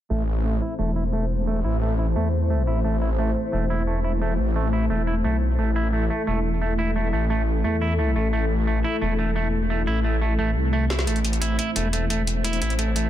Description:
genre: dark technical drum and bass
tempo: 175 BPM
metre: 4/4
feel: straight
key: A minor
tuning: A4 = 440 Hz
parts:
  - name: dark analog pad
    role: sustained chords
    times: 0.1-13.1 s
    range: A3 to C5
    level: -28 LUFS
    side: left 1 dB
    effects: chorus
  - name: semi-hollow electric guitar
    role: arpeggios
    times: 0.1-13.1 s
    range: A3 to E4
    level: -28 LUFS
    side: right 1 dB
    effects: low-pass filter, dub echo
  - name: wide detuned saw bass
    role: bass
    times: 0.1-13.1 s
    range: E1 to E2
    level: -23 LUFS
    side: equal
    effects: chorus, overdrive
  - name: drum and bass drum kit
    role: drums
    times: 10.9-13.0 s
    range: hi-hat, snare drum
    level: -28 LUFS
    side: equal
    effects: none
room: light reverb, digital ambience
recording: dense, heavily limited modern master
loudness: -21 LUFS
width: side -12 dB against mid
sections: 0.1-13.1 A section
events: filter sweep on clean electric guitar 0.1-13.1; drum fill 10.9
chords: 0.1 Am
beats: | 0.10 0.44 0.79 1.13 | 1.47 1.82 2.16 2.50 | 2.84 3.19 3.53 3.87 | 4.22 4.56 4.90 5.24 | 5.59 5.93 6.27 6.62 | 6.96 7.30 7.64 7.99 | 8.33 8.67 9.02 9.36 | 9.70 10.04 10.39 10.73 | 11.07 11.42 11.76 12.10 | 12.44 12.79

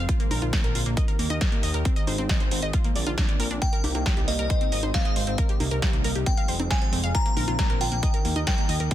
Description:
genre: uplifting trance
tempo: 136 BPM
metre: 4/4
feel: straight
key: unclear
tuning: A4 = 438 Hz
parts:
  - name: lush unison pad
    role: sustained chords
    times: 0.0-8.9 s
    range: C3 to Bb4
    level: -34 LUFS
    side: right 1 dB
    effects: chorus, sidechain pumping
  - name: wide unison pluck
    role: arpeggios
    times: 0.0-8.9 s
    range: Bb3 to F5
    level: -32 LUFS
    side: left 1 dB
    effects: sidechain pumping, dub echo
  - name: fat analog bass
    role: bass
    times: 0.0-8.9 s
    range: F1 to Eb2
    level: -28 LUFS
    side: equal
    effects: sidechain pumping
  - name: electronic kick drum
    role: drums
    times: 0.1-8.9 s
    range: none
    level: -24 LUFS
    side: equal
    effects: overdrive
  - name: punchy analog drum machine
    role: drums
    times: 0.1-8.9 s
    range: congas, hi-hat, snare drum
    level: -31 LUFS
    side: right 1 dB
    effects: none
  - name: glassy synth bell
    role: second line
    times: 3.6-8.9 s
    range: Eb5 to Bb5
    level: -30 LUFS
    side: left 2 dB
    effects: chorus, ping-pong delay
room: little or no reverb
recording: dense, heavily limited modern master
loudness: -22 LUFS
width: side -12 dB against mid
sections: 0.0-8.9 A section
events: none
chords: 0.1 Bbadd9; 1.0 Eb; 1.9 Ab; 2.7 Bbadd9; 3.6 Cm7; 4.5 Ab; 5.4 Cm7; 6.3 Fm; 7.1 Bbadd9; 8.0 Eb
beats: | 0.09 0.53 0.97 1.41 | 1.85 2.29 2.73 3.18 | 3.62 4.06 4.50 4.94 | 5.38 5.82 6.26 6.71 | 7.15 7.59 8.03 8.47 | 8.91

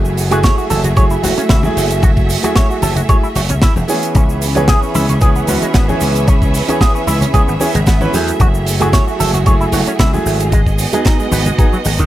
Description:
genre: nu-disco, nu disco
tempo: 113 BPM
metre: 4/4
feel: swing 53% on 16ths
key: C# minor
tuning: A4 = 440 Hz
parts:
  - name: clear concert grand piano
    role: accompaniment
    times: 0.0-11.7 s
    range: E3 to B4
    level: -19 LUFS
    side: right 2 dB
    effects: sidechain pumping, dub echo
  - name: warm studio string section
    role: sustained chords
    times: 0.0-12.1 s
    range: A3 to E5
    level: -23 LUFS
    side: right 2 dB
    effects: sidechain pumping
  - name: gritty slap bass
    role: bass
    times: 0.0-12.1 s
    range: E1 to E2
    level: -17 LUFS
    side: equal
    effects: overdrive, sidechain pumping
  - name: tight funk drum kit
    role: drums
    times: 0.1-12.1 s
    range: hi-hat, shaker, snare drum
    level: -20 LUFS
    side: right 2 dB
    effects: none
  - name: electric guitar with an envelope filter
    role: riff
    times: 0.3-12.0 s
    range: D#3 to C#5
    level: -21 LUFS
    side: right 1 dB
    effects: analog chorus, dub echo
  - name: congas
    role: percussion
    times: 0.3-12.1 s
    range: none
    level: -24 LUFS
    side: left 2 dB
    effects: none
  - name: electronic kick drum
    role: drums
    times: 0.4-12.1 s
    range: none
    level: -12 LUFS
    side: equal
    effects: none
room: studio reverb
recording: none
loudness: -11 LUFS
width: side -14 dB against mid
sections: 0.0-12.1 A section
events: none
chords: 0.0 F#m9; 4.2 C#m7; 8.4 F#m9; 10.5 G#m7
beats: 0.44 0.97 1.50 | 2.03 2.56 3.09 3.62 | 4.15 4.68 5.21 5.75 | 6.28 6.81 7.34 7.87 | 8.40 8.93 9.46 9.99 | 10.52 11.05 11.59

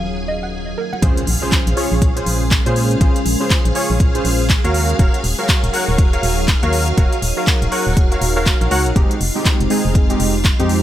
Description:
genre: deep house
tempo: 121 BPM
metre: 4/4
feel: swing 60% on 16ths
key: Bb minor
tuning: A4 = 438 Hz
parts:
  - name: deep dark ambient pad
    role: sustained chords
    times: 0.0-10.8 s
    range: Gb3 to C6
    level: -27 LUFS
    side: left 2 dB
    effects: chorus, built-in reverb, sidechain pumping
  - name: warm analog keys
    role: stabs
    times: 0.0-10.8 s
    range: Ab3 to Gb5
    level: -20 LUFS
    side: right 1 dB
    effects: chorus, sidechain pumping, tape echo
  - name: organ-like FM bass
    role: bass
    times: 0.0-10.8 s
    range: Eb1 to Bb2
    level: -19 LUFS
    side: equal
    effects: sidechain pumping
  - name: string machine, violins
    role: texture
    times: 0.0-10.8 s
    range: F4 to Ab5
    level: -28 LUFS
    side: equal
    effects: ensemble chorus, sidechain pumping
  - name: soft round pluck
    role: arpeggios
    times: 0.3-0.9 s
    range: Bb4 to Gb5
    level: -27 LUFS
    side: right 3 dB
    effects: chorus, sidechain pumping, tape echo
  - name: congas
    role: percussion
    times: 0.9-1.0 s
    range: none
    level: -34 LUFS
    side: left 1 dB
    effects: none
  - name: deep house drum kit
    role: drums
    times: 1.0-10.8 s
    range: handclaps, hi-hat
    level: -22 LUFS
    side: equal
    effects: none
  - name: electronic kick drum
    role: drums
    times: 1.0-10.6 s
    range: none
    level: -15 LUFS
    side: equal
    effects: none
  - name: impact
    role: sound effects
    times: 1.1-3.0 s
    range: none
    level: -29 LUFS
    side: equal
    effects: none
room: digital ambience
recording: none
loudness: -14 LUFS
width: side -12 dB against mid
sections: 0.0-1.0 A section; 1.0-10.8 B section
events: drop 1.0-10.8; impact 1.0-3.0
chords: 0.0 Ebm9; 1.0 Bbm9; 4.7 Ebm9; 9.0 Fm9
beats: 0.03 0.53 | 1.02 1.52 2.02 2.51 | 3.01 3.50 4.00 4.50 | 4.99 5.49 5.98 6.48 | 6.98 7.47 7.97 8.46 | 8.96 9.46 9.95 10.45

